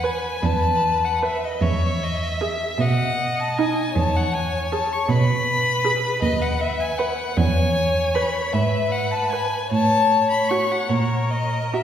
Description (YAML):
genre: classical, slow romantic movement for string quartet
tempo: 51 BPM (dotted quarters)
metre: 6/8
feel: rubato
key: E major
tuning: A4 = 440 Hz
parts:
  - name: clear violin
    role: melody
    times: 0.0-11.8 s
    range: C#5 to C#6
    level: -23 LUFS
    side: left 4 dB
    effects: none
  - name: rich violin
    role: second line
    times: 0.0-11.8 s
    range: A#4 to E5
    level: -26 LUFS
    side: right 1 dB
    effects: none
  - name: rich viola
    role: accompaniment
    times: 0.0-11.8 s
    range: D#4 to B4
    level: -28 LUFS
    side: right 4 dB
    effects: none
  - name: rich cello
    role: bass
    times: 0.0-11.8 s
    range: D#2 to B2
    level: -23 LUFS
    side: right 2 dB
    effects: none
room: wet concert hall reverb, RT60 1.9 s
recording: heard from further back in the room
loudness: -19 LUFS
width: side -9 dB against mid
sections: 0.0-11.8 A section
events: none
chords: 0.0 E; 2.8 B; 4.0 E; 6.2 B/D#; 7.4 E; 8.5 G#m; 9.7 F#m/A; 10.9 F#/A# (rootless)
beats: 0.43 | 1.62 2.80 | 3.96 5.09 | 6.22 7.37 | 8.54 9.71 | 10.89